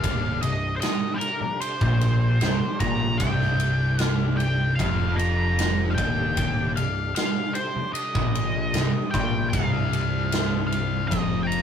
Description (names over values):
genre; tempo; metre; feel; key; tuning
stoner and doom metal; 76 BPM; 4/4; straight; C minor; A4 = 440 Hz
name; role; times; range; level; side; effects
octave-fuzz lead guitar; melody; 0.0-11.6 s; G4 to Bb5; -28 LUFS; left 1 dB; wah, distortion
bright tonewheel organ; sustained chords; 0.0-11.6 s; C3 to G3; -37 LUFS; equal; slow rotary speaker, chorus vibrato
fuzz guitar; riff; 0.0-11.6 s; C2 to Bb2; -28 LUFS; right 4 dB; distortion
thick fuzz guitar; riff; 0.0-11.6 s; C2 to Bb2; -28 LUFS; left 6 dB; distortion
growling picked electric bass; bass; 0.0-11.6 s; C1 to Bb1; -29 LUFS; equal; overdrive, tube saturation
big rock drum kit; drums; 0.0-11.6 s; kick drum, ride cymbal, snare drum; -27 LUFS; right 1 dB; none
room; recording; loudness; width
moderate booth ambience, RT60 0.3 s; rough rehearsal-room recording; -21 LUFS; side -8 dB against mid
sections
0.0-11.6 A section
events
none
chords
0.0 Cm